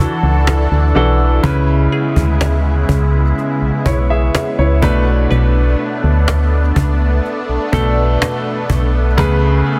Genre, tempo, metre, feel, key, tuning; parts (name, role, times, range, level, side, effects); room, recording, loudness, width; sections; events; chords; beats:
contemporary R&B; 62 BPM; 4/4; straight; A4 = 440 Hz
clear grand piano; accompaniment; 0.0-9.8 s; B2 to E5; -21 LUFS; equal
lush unison pad; sustained chords; 0.0-9.8 s; C#3 to A4; -22 LUFS; equal; chorus, phaser
solid FM bass; bass; 0.0-9.6 s; B1 to D2; -16 LUFS; equal
cajon; drums; 0.5-9.4 s; -20 LUFS; equal
glassy wavetable pluck; texture; 1.9-9.8 s; G#4 to F#5; -33 LUFS; equal
light reverb, small room ambience; dense, heavily limited modern master; -15 LUFS; mono
0.0-1.4 A section; 1.4-9.8 B section
0.0 E9sus4; 1.4 C#m7; 4.8 Bm7; 9.2 Amaj7/C#
0.47 | 1.44 2.41 3.37 4.34 | 5.31 6.28 7.24 8.21 | 9.18